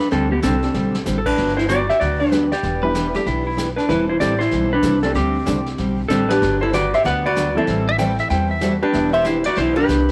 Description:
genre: country, western swing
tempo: 190 BPM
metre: 4/4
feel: swing 64% on 8ths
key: G major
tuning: A4 = 440 Hz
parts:
  - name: clean lap steel guitar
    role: melody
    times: 0.0-10.1 s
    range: B3 to F#5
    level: -21 LUFS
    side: equal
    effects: none
  - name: vintage brush drum kit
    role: drums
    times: 0.0-10.1 s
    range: brushed snare drum, crash cymbal, hi-hat, kick drum, snare drum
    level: -34 LUFS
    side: equal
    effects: none
  - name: picked steel-string acoustic guitar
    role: accompaniment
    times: 0.1-10.0 s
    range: D3 to A4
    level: -27 LUFS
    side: equal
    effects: none
  - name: upright bass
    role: bass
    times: 0.1-10.1 s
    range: E1 to E2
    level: -27 LUFS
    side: equal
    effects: none
  - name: honky-tonk upright piano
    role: accompaniment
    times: 0.6-9.8 s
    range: E3 to A4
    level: -29 LUFS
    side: equal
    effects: none
  - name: pedal steel guitar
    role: second line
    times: 2.8-3.7, 7.9-8.7 s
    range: E4 to G5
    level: -26 LUFS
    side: equal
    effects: none
  - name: archtop guitar, miked and amplified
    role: second line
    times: 6.1-10.1 s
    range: D4 to D5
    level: -27 LUFS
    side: equal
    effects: none
room: light reverb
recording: none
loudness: -19 LUFS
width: mono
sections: 0.0-10.1 A section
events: drum fill 0.7-1.1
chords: 0.1 D7sus4; 1.4 Gmaj7; 2.6 Em7; 3.9 Am7/E; 5.2 D7sus4; 6.4 Gmaj7; 7.7 Am7; 8.9 Em7

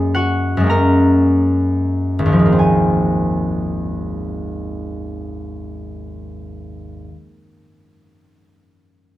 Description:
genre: classical, solo harp piece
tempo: 30-38 BPM (dotted quarters)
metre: 6/8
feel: rubato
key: Ab mixolydian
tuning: A4 = 439 Hz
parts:
  - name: concert harp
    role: solo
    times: 0.0-7.4 s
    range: Ab1 to Bb5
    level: -16 LUFS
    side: equal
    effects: none
room: moderate recital hall reverb, RT60 1.4 s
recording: close, detailed microphones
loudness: -14 LUFS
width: side -15 dB against mid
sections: 0.0-2.6 A section; 2.6-6.3 B section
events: slowing down 0.0-2.6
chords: 0.0 Gb9; 2.6 Ab69

